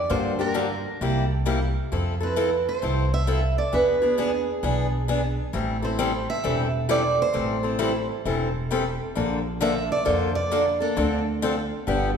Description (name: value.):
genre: acoustic string swing (jazz manouche).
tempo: 133 BPM.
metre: 4/4.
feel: swing 65% on 8ths.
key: A minor.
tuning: A4 = 440 Hz.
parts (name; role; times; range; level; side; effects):
picked steel-string acoustic guitar; melody; 0.0-11.2 s; G#4 to E5; -25 LUFS; right 3 dB; none.
upright bass; bass; 0.0-12.2 s; E1 to G2; -27 LUFS; right 1 dB; none.
picked steel-string acoustic guitar; accompaniment; 0.1-12.1 s; C3 to A4; -26 LUFS; left 3 dB; none.
room: wet recital hall reverb, RT60 1.7 s.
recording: recorded in a church or concert hall.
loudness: -22 LUFS.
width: side -7 dB against mid.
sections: 0.0-9.2 A section; 9.2-12.2 B section.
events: none.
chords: 0.1 Gm7; 1.0 C7; 1.9 Fmaj7; 3.7 E7; 5.5 Am7; 9.2 Bbmaj7; 11.0 Dm7.